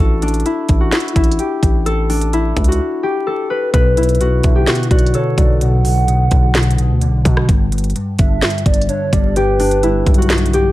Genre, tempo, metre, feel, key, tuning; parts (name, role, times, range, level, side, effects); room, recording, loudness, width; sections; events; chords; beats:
hip hop, trap; 128 BPM; 4/4; half-time; B minor; A4 = 441 Hz
concert harp; melody; 0.0-10.7 s; D4 to B4; -18 LUFS; left 2 dB; low-pass filter, ping-pong delay
distorted 808-style bass; bass; 0.0-10.7 s; G1 to B2; -17 LUFS; equal; distortion
trap drum kit; drums; 0.2-10.6 s; hi-hat, kick drum, rim click, snare drum; -16 LUFS; equal
mellow electric guitar; accompaniment; 3.7-10.7 s; G2 to G3; -18 LUFS; left 1 dB; ensemble chorus, low-pass filter
hollow clarinet-like synth lead; second line; 4.4-10.3 s; B4 to F#5; -22 LUFS; right 4 dB; chorus, ping-pong delay
little or no reverb; vinyl crackle; -12 LUFS; side -16 dB against mid
0.0-10.7 A section
break 2.8-3.7
0.0 A5; 3.7 Bm; 7.5 G
0.46 0.92 1.39 | 1.86 2.33 2.80 3.27 | 3.74 4.21 4.67 5.14 | 5.61 6.08 6.55 7.02 | 7.49 7.96 8.42 8.89 | 9.36 9.83 10.30